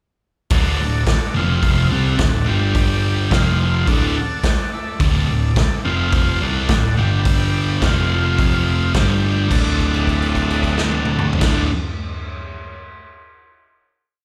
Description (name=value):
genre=garage rock duo or trio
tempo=107 BPM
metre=4/4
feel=straight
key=unclear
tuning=A4 = 440 Hz
part: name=combo organ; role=sustained chords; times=0.5-11.7 s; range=F4 to A5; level=-28 LUFS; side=equal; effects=none
part: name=thick fuzz guitar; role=riff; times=0.5-11.7 s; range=D2 to C4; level=-22 LUFS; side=equal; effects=distortion
part: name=hollow-body short-scale picked electric bass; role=bass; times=0.5-11.7 s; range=D1 to C2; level=-24 LUFS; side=equal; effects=none
part: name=raw garage drum kit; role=drums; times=0.5-11.5 s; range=crash cymbal, hi-hat, kick drum, snare drum, toms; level=-23 LUFS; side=equal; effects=none
room=small room ambience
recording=live gig heard through the venue's PA, club reverb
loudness=-18 LUFS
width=mono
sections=0.5-9.5 riff; 9.5-11.8 final chord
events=transistor combo organ fill 3.9-5.0; held note 9.5-11.4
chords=0.5 D; 1.3 F5; 1.9 D; 2.5 G5; 3.3 F5; 3.9 D; 5.8 F5; 6.4 D; 7.0 G5; 7.8 F5; 8.9 G5; 9.5 D